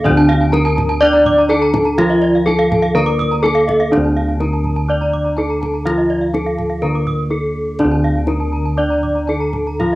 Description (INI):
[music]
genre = Balinese gamelan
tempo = 124 BPM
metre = 4/4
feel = straight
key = D pelog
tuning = A4 = 442 Hz
[part]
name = gamelan-type bronze metallophone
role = melody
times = 0.0-10.0 s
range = D4 to D5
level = -16 LUFS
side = equal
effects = cassette tape
[part]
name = gamelan-type bronze metallophone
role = accompaniment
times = 0.0-10.0 s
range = D3 to D4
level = -21 LUFS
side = right 1 dB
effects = cassette tape
[part]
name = gamelan-type bronze metallophone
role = arpeggios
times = 0.0-9.9 s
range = D5 to D6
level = -28 LUFS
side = left 3 dB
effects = cassette tape
[part]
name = gamelan-type bronze metallophone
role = arpeggios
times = 0.0-10.0 s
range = D5 to Eb6+20c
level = -24 LUFS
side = right 3 dB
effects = cassette tape
[part]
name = gamelan-type bossed gongs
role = bass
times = 0.0-10.0 s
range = D2 to F4-30c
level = -19 LUFS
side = equal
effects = none
[part]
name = kendang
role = percussion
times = 0.1-9.9 s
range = none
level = -26 LUFS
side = left 1 dB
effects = none
[sound]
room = light reverb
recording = home recording on cassette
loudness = -13 LUFS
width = side -18 dB against mid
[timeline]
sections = 0.0-10.0 A section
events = none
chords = none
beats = | 0.04 0.53 1.01 1.50 | 1.98 2.46 2.95 3.43 | 3.92 4.40 4.88 5.37 | 5.85 6.34 6.82 7.31 | 7.79 8.28 8.78 9.29 | 9.81